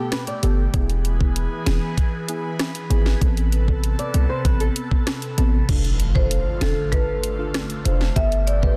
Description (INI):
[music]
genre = dancehall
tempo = 97 BPM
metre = 4/4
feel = straight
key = unclear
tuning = A4 = 438 Hz
[part]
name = deep mellow chord stab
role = accompaniment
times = 0.0-8.8 s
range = B3 to A4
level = -33 LUFS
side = equal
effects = chorus, phaser
[part]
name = airy breathy pad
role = sustained chords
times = 0.0-8.8 s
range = B2 to B4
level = -33 LUFS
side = equal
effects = chorus, phaser, sidechain pumping
[part]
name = flamenco guitar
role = arpeggios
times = 0.0-5.5 s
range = G4 to D5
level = -34 LUFS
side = equal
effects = none
[part]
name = island pop drum kit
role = drums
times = 0.1-8.8 s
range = crash cymbal, hi-hat, kick drum, rim click, snare drum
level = -25 LUFS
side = equal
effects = none
[part]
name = hard-hitting 808-style bass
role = bass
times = 0.4-8.8 s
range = E1 to C2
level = -22 LUFS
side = equal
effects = none
[part]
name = impact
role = sound effects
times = 5.7-8.2 s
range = none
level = -31 LUFS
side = equal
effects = none
[part]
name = marimba with medium hard mallets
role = melody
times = 6.1-8.8 s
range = A4 to E5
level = -28 LUFS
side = equal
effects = none
[sound]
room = digital ambience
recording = dense, heavily limited modern master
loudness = -21 LUFS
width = mono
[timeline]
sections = 0.0-5.7 A section; 5.7-8.8 B section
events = impact 5.7-8.2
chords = 0.0 Gadd9; 0.7 E; 3.2 Amadd9; 5.7 F6; 8.2 Gadd9